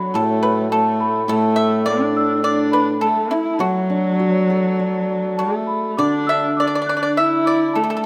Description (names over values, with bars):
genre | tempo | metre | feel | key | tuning
chinese traditional, Chinese chamber ensemble | 103 BPM | 4/4 | rubato | D gong mode | A4 = 439 Hz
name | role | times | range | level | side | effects
large celesta | melody | 0.0-8.1 s | E5 to F#6 | -24 LUFS | equal | none
clear horsehead fiddle | second line | 0.0-8.1 s | F#3 to E4 | -23 LUFS | equal | none
pipa | second line | 0.0-8.1 s | E4 to E5 | -26 LUFS | equal | none
hammered dulcimer | accompaniment | 0.0-7.8 s | A2 to D5 | -25 LUFS | equal | none
room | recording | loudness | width
light reverb | close, detailed microphones | -18 LUFS | mono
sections
0.0-8.1 A section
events
none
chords
none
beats
0.16 0.73 | 1.30 1.87 2.45 3.03 | 3.61 4.20 4.79 5.39 | 6.00 6.60 7.19 7.76